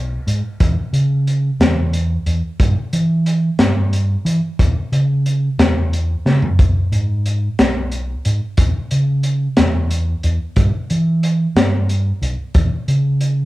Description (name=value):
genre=psychedelic rock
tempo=60 BPM (dotted quarters)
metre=6/8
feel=straight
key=unclear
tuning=A4 = 440 Hz
part: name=fingered electric bass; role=bass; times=0.0-13.4 s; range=B1 to E3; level=-17 LUFS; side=equal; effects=none
part: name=crunchy breakbeat drum kit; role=drums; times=0.3-13.4 s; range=hi-hat, kick drum, snare drum, toms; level=-17 LUFS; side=equal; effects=none
room=light reverb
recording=band playing live in one room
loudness=-15 LUFS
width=side -18 dB against mid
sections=0.0-13.5 A section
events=drum fill 6.3-6.6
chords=none